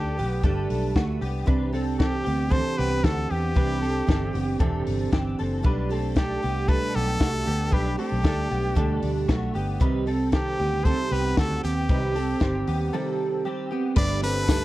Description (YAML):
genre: jangly indie pop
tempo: 115 BPM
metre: 4/4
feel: straight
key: unclear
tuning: A4 = 440 Hz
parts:
  - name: brilliant trumpet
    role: melody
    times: 0.0-14.6 s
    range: G4 to D5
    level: -29 LUFS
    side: equal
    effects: slapback echo
  - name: picked steel-string acoustic guitar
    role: accompaniment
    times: 0.0-14.6 s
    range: B2 to B4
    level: -28 LUFS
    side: right 4 dB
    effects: none
  - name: direct-recorded clean electric guitar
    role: arpeggios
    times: 0.0-14.6 s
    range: A3 to B4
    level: -32 LUFS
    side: left 4 dB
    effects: ensemble chorus, slapback echo
  - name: vintage muted fingered electric bass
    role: bass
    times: 0.0-14.6 s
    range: E1 to E2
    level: -28 LUFS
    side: equal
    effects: none
  - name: compact cocktail drum kit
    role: drums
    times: 0.2-14.6 s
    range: crash cymbal, hi-hat, kick drum, snare drum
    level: -23 LUFS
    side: equal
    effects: none
  - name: tambourine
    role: percussion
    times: 14.0-14.6 s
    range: none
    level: -42 LUFS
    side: left 5 dB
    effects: none
room: little or no reverb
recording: dry, close 1970s-style studio recording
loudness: -22 LUFS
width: side -16 dB against mid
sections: 0.0-14.0 A section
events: break 12.9-14.0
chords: 0.0 Gadd9; 1.5 Cadd9; 5.6 Gadd9/B; 9.8 Cm; 14.0 Gsus2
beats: 0.44 0.96 | 1.48 2.00 2.52 3.04 | 3.56 4.08 4.61 5.13 | 5.65 6.17 6.69 7.21 | 7.73 8.25 8.77 9.29 | 9.81 10.33 10.85 11.37 | 11.89 12.41 12.93 13.45 | 13.97 14.49